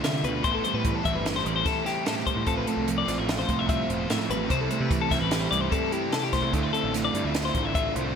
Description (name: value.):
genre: math rock and midwest emo.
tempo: 148 BPM.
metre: 5/4.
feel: straight.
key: C major.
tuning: A4 = 440 Hz.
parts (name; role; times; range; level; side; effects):
mellow electric guitar; accompaniment; 0.0-8.2 s; E2 to G4; -30 LUFS; right 7 dB; none.
twelve-string electric guitar; arpeggios; 0.0-8.2 s; G4 to E5; -28 LUFS; left 9 dB; none.
biting overdriven guitar; riff; 0.0-8.2 s; A2 to F4; -31 LUFS; right 1 dB; none.
fuzz picked electric bass; bass; 0.0-8.1 s; E1 to D3; -32 LUFS; equal; overdrive.
compact cocktail drum kit; drums; 0.0-8.1 s; hi-hat, kick drum, snare drum; -30 LUFS; equal; gated reverb.
room: moderate lush hall reverb, RT60 1.7 s.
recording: bright 1980s-style digital production.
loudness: -23 LUFS.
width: side -7 dB against mid.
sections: 0.0-8.2 A section.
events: none.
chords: 0.4 Am9; 2.5 Fmaj7/A; 4.5 C6; 6.5 Dm9.